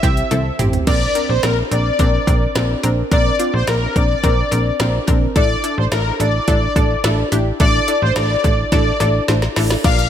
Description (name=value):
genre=synth-pop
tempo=107 BPM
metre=4/4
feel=straight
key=unclear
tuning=A4 = 439 Hz
part: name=analog synth brass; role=melody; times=0.0-10.1 s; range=Bb4 to F5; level=-20 LUFS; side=left 2 dB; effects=chorus, ping-pong delay
part: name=analog pluck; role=accompaniment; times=0.0-10.0 s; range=C4 to D5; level=-21 LUFS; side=right 1 dB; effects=chorus
part: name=slap-like FM bass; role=bass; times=0.0-10.1 s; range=A1 to C2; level=-19 LUFS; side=equal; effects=none
part: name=deep house drum kit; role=drums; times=0.0-10.1 s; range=crash cymbal, hi-hat, kick drum, snare drum, toms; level=-19 LUFS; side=equal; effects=gated reverb
room=light reverb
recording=none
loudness=-14 LUFS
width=side -10 dB against mid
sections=0.9-9.8 A section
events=drum fill 0.3-0.9, 8.7-9.8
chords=0.0 C; 0.9 Bbadd9; 5.4 Asus4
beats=0.31 | 0.87 1.43 1.99 2.55 | 3.12 3.68 4.24 4.80 | 5.36 5.92 6.48 7.04 | 7.60 8.16 8.72 9.28 | 9.84